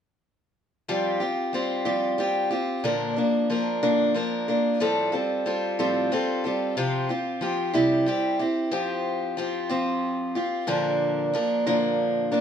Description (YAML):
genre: folk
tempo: 61 BPM (dotted quarters)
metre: 6/8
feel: straight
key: F major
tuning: A4 = 441 Hz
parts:
  - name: picked acoustic archtop guitar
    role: accompaniment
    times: 0.9-12.4 s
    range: A2 to Bb4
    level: -22 LUFS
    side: equal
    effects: none
room: moderate studio reverb, RT60 0.7 s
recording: dark, warm production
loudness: -23 LUFS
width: side -8 dB against mid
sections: 0.9-8.7 A section; 8.7-12.4 B section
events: none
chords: 0.9 Fsus2; 2.8 Bb; 4.8 Fadd9/A; 6.8 Csus4; 7.7 C; 8.7 Fsus2; 10.7 Bb